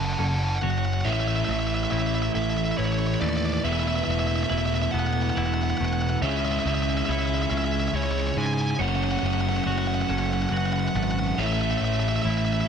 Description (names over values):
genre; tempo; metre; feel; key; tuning
post-rock; 46 BPM (dotted quarters); 6/8; straight; A major; A4 = 439 Hz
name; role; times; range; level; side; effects
smooth overdriven lead guitar; melody; 0.0-12.7 s; C#5 to A5; -29 LUFS; right 3 dB; analog delay
clear studio string section; sustained chords; 0.0-12.7 s; C#3 to E5; -40 LUFS; left 1 dB; none
twangy electric guitar; arpeggios; 0.0-12.7 s; E2 to F#4; -36 LUFS; left 2 dB; analog delay
crunchy overdriven guitar; riff; 0.0-12.7 s; F#2 to F#4; -30 LUFS; left 12 dB; none
distorted electric guitar; riff; 0.0-12.7 s; E2 to C#4; -30 LUFS; right 11 dB; distortion
fuzz picked electric bass; bass; 0.0-12.6 s; E1 to G#2; -27 LUFS; left 1 dB; overdrive
twelve-string electric guitar; arpeggios; 0.2-12.7 s; G#4 to C#5; -39 LUFS; right 3 dB; analog delay
room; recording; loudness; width
light reverb, digital ambience; none; -22 LUFS; side -7 dB against mid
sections
0.0-1.1 A section; 1.1-12.7 B section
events
build-up 0.0-1.1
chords
0.0 F#m7; 1.1 A; 3.6 Esus4; 6.2 C#m; 8.8 F#m7; 11.4 A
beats
| 1.05 2.35 | 3.64 4.93 | 6.22 7.51 | 8.80 10.10 | 11.39 12.68